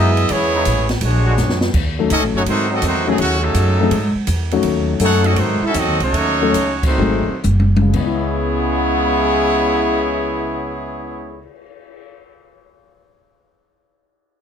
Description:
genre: jazz, big band swing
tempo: 116-166 BPM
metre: 4/4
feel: swing 66% on 8ths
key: C# minor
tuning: A4 = 440 Hz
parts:
  - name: brilliant trumpet section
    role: melody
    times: 0.0-11.5 s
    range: F#3 to F#5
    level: -20 LUFS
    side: equal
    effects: none
  - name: clear trombone section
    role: second line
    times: 0.0-11.5 s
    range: A2 to F#4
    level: -21 LUFS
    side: right 1 dB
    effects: none
  - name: mellow trombone section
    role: sustained chords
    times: 0.0-1.3 s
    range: C#3 to F#4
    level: -25 LUFS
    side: equal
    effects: none
  - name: upright bass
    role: bass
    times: 0.0-11.4 s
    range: F#1 to G#2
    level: -19 LUFS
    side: equal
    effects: none
  - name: open jazz drum kit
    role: drums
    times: 0.2-12.0 s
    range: crash cymbal, cymbal swell, hi-hat, kick drum, ride cymbal, snare drum, toms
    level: -24 LUFS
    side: equal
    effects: none
  - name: warm baby grand piano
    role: accompaniment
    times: 2.0-11.6 s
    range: C#3 to D#5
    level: -20 LUFS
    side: left 7 dB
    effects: none
room: light reverb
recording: close, detailed microphones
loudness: -14 LUFS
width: side -8 dB against mid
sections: 0.0-1.7 A section; 1.7-7.9 B section; 7.9-12.1 C section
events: drum fill 1.4-1.7, 7.4-7.9; slowing down 4.6-7.9; band accent 6.8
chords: 0.0 C#m9; 1.0 A#7alt; 1.7 D#m7b5; 2.5 G#7b9; 3.2 D#m7b5; 3.9 G#5; 4.6 D#m7b5; 5.4 G#7b9; 6.1 D#m7b5; 7.0 G#7b9; 7.9 C#m9

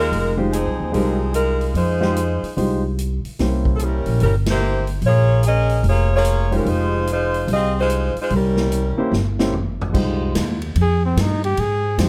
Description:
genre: jazz, big band swing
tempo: 147 BPM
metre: 4/4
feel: swing 65% on 8ths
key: F minor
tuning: A4 = 436 Hz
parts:
  - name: clear saxophone section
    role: melody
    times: 0.0-9.1 s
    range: F3 to Eb5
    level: -23 LUFS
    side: equal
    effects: none
  - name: upright bass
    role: bass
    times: 0.0-12.1 s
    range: F1 to Ab2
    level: -22 LUFS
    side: equal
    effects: none
  - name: swinging big-band drum kit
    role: drums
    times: 0.1-12.1 s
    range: crash cymbal, hi-hat, kick drum, ride cymbal, snare drum, toms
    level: -28 LUFS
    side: equal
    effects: none
  - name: warm baby grand piano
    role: accompaniment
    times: 0.4-4.0, 6.5-12.1 s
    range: Ab3 to C5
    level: -25 LUFS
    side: equal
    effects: none
  - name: breathy trumpet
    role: melody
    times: 10.8-12.0 s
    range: C4 to Ab4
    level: -24 LUFS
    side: equal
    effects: none
room: little or no reverb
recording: close, detailed microphones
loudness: -19 LUFS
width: mono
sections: 0.0-9.9 A section; 9.9-12.1 B section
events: band accent 4.4; drum fill 9.1-9.9; trumpet solo 9.9-12.1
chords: 0.1 Fm7; 3.4 C7b9; 5.0 Bbm7; 6.7 Fm7; 8.3 C7b9; 9.9 Fm7

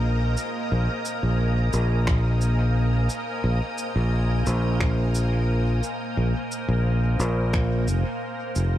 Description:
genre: ambient dub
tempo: 88 BPM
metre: 4/4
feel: straight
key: unclear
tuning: A4 = 440 Hz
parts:
  - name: soft additive organ-like pad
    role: sustained chords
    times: 0.0-8.8 s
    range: Bb3 to Ab5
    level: -29 LUFS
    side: equal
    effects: ensemble chorus, built-in reverb
  - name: fingered electric bass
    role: bass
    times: 0.0-8.8 s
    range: F1 to Bb1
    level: -21 LUFS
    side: equal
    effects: none
  - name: electronic shaker and finger snaps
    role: drums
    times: 0.4-8.7 s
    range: none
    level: -34 LUFS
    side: right 1 dB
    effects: dub echo
  - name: electronic kick drum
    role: drums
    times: 2.1-7.7 s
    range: none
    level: -24 LUFS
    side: equal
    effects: none
room: digital ambience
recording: vinyl crackle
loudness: -21 LUFS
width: side -13 dB against mid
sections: 0.0-8.8 A section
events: none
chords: 0.0 Abadd9/Bb

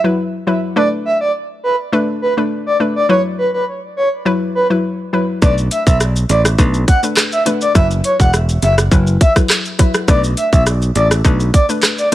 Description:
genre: dancehall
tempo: 103 BPM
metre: 4/4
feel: straight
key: B minor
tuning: A4 = 440 Hz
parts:
  - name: hollow square pluck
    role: accompaniment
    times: 0.0-12.1 s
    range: F#3 to B4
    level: -18 LUFS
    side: left 2 dB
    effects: chorus
  - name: breathy flute-like synth lead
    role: melody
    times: 0.8-12.1 s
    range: B4 to F#5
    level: -17 LUFS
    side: equal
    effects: chorus, tape echo
  - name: modern bright picked electric bass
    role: bass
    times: 5.4-11.5 s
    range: E1 to B1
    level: -15 LUFS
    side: equal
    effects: none
  - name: island pop drum kit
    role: drums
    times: 5.4-12.1 s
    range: handclaps, hi-hat, kick drum, rim click, shaker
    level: -13 LUFS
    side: equal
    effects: overdrive
  - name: bongos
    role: percussion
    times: 6.3-12.1 s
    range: none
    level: -24 LUFS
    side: right 7 dB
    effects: none
room: little or no reverb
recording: none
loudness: -12 LUFS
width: side -14 dB against mid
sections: 0.0-12.1 A section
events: none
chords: 0.0 F#7sus4; 0.8 Bm7; 3.1 F#7sus4; 5.4 Bm7; 7.8 F#7sus4; 10.1 Bm7

